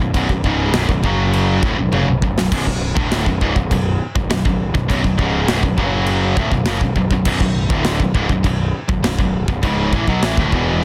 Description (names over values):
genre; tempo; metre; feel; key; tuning
heavy metal; 101 BPM; 4/4; straight; B minor; A4 = 441 Hz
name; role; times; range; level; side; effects
tight distorted guitar; riff; 0.0-10.8 s; B1 to F#3; -23 LUFS; equal; distortion
tight distorted guitar; riff; 0.0-10.8 s; B1 to F#3; -25 LUFS; equal; distortion
fuzz picked electric bass; bass; 0.0-10.8 s; B0 to B1; -24 LUFS; equal; overdrive
big rock drum kit; drums; 0.1-10.7 s; china cymbal, crash cymbal, kick drum, snare drum, toms; -22 LUFS; equal; none
room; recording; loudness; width
little or no reverb; dense, heavily limited modern master; -17 LUFS; mono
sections
0.0-10.8 A section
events
drum fill 1.9-2.5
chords
0.0 B5; 1.0 F#5; 1.6 Bm; 5.8 F#5; 6.4 Bm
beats
| 0.14 0.73 1.33 1.92 | 2.51 3.11 3.70 4.29 | 4.89 5.48 6.07 6.67 | 7.26 7.85 8.45 9.04 | 9.63 10.23 10.82